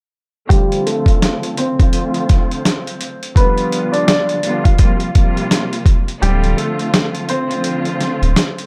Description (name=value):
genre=hip hop, boom-bap hip-hop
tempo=84 BPM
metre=4/4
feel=swing 60% on 16ths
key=D minor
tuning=A4 = 440 Hz
part: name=bright upright piano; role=melody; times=0.5-8.7 s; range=G3 to F5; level=-23 LUFS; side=equal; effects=high-pass filter, low-pass filter, slapback echo
part: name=warm studio string section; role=accompaniment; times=0.5-8.7 s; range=C3 to F4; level=-24 LUFS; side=equal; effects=cassette tape, high-pass filter, low-pass filter
part: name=dusty soul sampler-style drum kit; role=drums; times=0.5-8.7 s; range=hi-hat, kick drum, snare drum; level=-17 LUFS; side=equal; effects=overdrive
part: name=soft dub sub bass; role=bass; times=6.2-8.3 s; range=D1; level=-17 LUFS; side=equal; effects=none
room=little or no reverb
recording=none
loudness=-16 LUFS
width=mono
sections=0.5-6.2 A section; 6.2-8.7 B section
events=filter sweep 0.5-6.2; break 6.2-8.7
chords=0.5 Dm7; 3.4 G7/D; 4.8 C7sus4; 6.2 Dm7